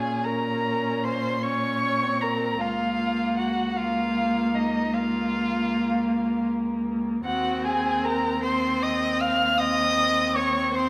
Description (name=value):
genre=classical, slow romantic movement for string quartet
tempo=51 BPM (dotted quarters)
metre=12/8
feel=rubato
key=Bb minor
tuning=A4 = 440 Hz
part: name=warm violin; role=melody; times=0.0-10.9 s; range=Eb5 to F6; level=-30 LUFS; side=equal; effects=none
part: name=warm violin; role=second line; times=0.0-10.9 s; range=Eb4 to F5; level=-31 LUFS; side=equal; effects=none
part: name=warm viola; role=accompaniment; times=0.0-10.9 s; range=Bb3 to Db4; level=-30 LUFS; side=equal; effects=none
part: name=rich cello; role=bass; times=0.0-10.9 s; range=Db2 to Bb2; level=-33 LUFS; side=equal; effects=none
room=wet recital hall reverb, RT60 1.4 s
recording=none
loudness=-25 LUFS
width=mono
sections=0.0-10.9 A section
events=none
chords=0.0 Bbm; 2.6 Bbm/Db; 7.3 Ebm13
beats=0.25 1.44 | 2.61 3.77 4.95 6.10 | 7.26 8.45 9.60 10.75